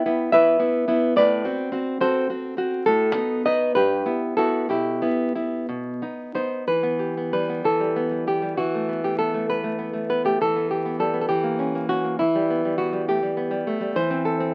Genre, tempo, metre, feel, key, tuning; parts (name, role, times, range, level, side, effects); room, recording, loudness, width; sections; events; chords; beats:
romantic piece for solo classical guitar; 59-74 BPM (dotted quarters); 6/8; rubato; E minor; A4 = 440 Hz
nylon-string guitar; solo; 0.0-14.5 s; G2 to G5; -23 LUFS; equal
light reverb; very old 78 rpm record, vinyl crackle; -23 LUFS; mono
0.0-6.7 A section; 6.7-14.5 B section
0.0 Em; 1.2 F#dim/A; 2.9 B7/A; 3.7 Em/G; 4.7 Em/B; 5.7 B; 6.7 Em; 8.6 Emadd11; 10.4 Em; 11.3 Edim7; 12.2 Em; 13.9 Am/E
0.33 | 1.16 2.01 | 2.86 3.75 | 4.70 5.70 | 6.68 7.64 | 8.57 9.48 | 10.41 11.30 | 12.19 13.06 | 13.94